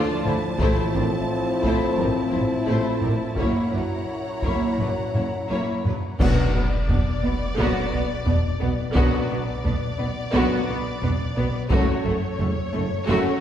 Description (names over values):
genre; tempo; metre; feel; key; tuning
cinematic, epic orchestral film score; 87 BPM; 4/4; straight; B minor from 6.2 s; A4 = 440 Hz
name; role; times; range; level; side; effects
warm symphonic violin section; melody; 0.0-13.4 s; Bb4 to D5; -33 LUFS; left 4 dB; none
rich studio violin section; second line; 0.0-13.4 s; A3 to F#4; -32 LUFS; left 3 dB; none
clear symphonic viola section; accompaniment; 0.0-13.4 s; F#3 to C4; -28 LUFS; right 1 dB; none
bright trombone section; sustained chords; 0.0-13.3 s; F#2 to E4; -32 LUFS; right 2 dB; none
mellow French horn section; sustained chords; 0.0-13.3 s; A#2 to C#5; -30 LUFS; left 2 dB; none
rich symphonic string section; sustained chords; 0.0-6.2 s; F3 to A#5; -31 LUFS; left 1 dB; none
clear symphonic double bass section; bass; 0.3-13.2 s; F#1 to D2; -29 LUFS; right 1 dB; none
rich symphonic cello section; bass; 0.3-13.2 s; F#2 to D3; -30 LUFS; right 2 dB; none
taiko ensemble; drums; 0.3-12.7 s; none; -27 LUFS; equal; none
timpani; percussion; 0.6-1.6, 6.2-7.2 s; A2 to B2; -30 LUFS; left 1 dB; none
clash cymbals and concert bass drum; percussion; 6.2-7.5 s; none; -28 LUFS; equal; none
sub drop; sound effects; 6.2-9.0 s; none; barely audible; none; none
room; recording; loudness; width
wet scoring stage reverb, RT60 1.5 s; heard from further back in the room; -20 LUFS; side -10 dB against mid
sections
0.0-6.2 A section; 6.2-13.4 B section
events
band accent 6.2-6.9; impact 6.2-9.0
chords
0.0 Dm; 0.6 Am; 3.4 F#7; 6.2 Bm; 11.7 F#m